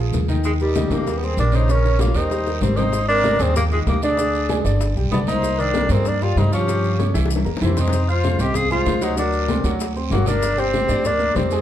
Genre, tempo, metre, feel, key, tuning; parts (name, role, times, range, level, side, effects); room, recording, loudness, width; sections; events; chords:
Afro-Cuban jazz; 192 BPM; 4/4; straight; Eb major; A4 = 442 Hz
clear baby grand piano; accompaniment; 0.0-11.6 s; C3 to G6; -26 LUFS; right 1 dB
upright bass; bass; 0.0-11.6 s; G1 to G2; -21 LUFS; equal
bongos; percussion; 0.1-11.6 s; -31 LUFS; left 6 dB
congas; percussion; 0.1-11.6 s; -27 LUFS; left 2 dB
guiro; percussion; 0.1-11.6 s; -37 LUFS; right 8 dB
maracas; percussion; 0.1-11.6 s; -38 LUFS; left 6 dB
breathy concert flute; second line; 0.4-11.6 s; Eb4 to F5; -27 LUFS; left 4 dB
clear tenor saxophone; melody; 0.5-11.6 s; G3 to Ab4; -22 LUFS; equal
moderate large studio reverb, RT60 1.2 s; dark, warm production; -17 LUFS; side -11 dB against mid
0.0-2.9 A section; 2.9-11.6 B section
drum fill 2.5-2.9, 7.1-7.9
0.4 Eb; 2.3 Eb6; 2.9 Abmaj9; 4.2 G5; 4.8 G; 5.4 Cm9; 6.7 Dbmaj7#11; 7.3 C7; 7.9 Fm; 9.2 Daug7; 10.4 Gm7